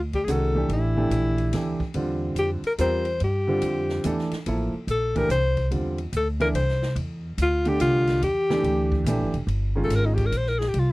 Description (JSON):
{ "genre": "modal jazz", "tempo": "143 BPM", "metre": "3/4", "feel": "swing 65% on 8ths", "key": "unclear", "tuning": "A4 = 440 Hz", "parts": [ { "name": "upright bass", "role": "bass", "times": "0.0-10.9 s", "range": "E1 to G2", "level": "-26 LUFS", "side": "equal", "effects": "none" }, { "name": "breathy alto saxophone", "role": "melody", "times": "0.1-10.9 s", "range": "Eb4 to C5", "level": "-25 LUFS", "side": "left 2 dB", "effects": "none" }, { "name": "open jazz drum kit", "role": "drums", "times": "0.1-10.9 s", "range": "hi-hat, kick drum, ride cymbal, snare drum", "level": "-37 LUFS", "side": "equal", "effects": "none" }, { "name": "clear concert grand piano", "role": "accompaniment", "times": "0.3-10.3 s", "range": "D3 to Bb4", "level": "-27 LUFS", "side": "right 2 dB", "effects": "none" } ], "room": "light reverb", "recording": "dry, close 1970s-style studio recording", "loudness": "-22 LUFS", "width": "side -20 dB against mid", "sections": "0.0-9.5 A section; 9.5-10.9 B section", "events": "alto saxophone solo 9.5-10.9", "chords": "0.0 Am7; 2.0 Cadd9; 4.5 Am7; 7.0 Cadd9; 9.5 Cm7", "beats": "0.28 | 0.70 1.12 1.54 | 1.95 2.37 2.79 | 3.21 3.63 4.05 | 4.46 4.88 5.30 | 5.72 6.14 6.55 | 6.97 7.39 7.81 | 8.23 8.65 9.06 | 9.48 9.90 10.32 | 10.74" }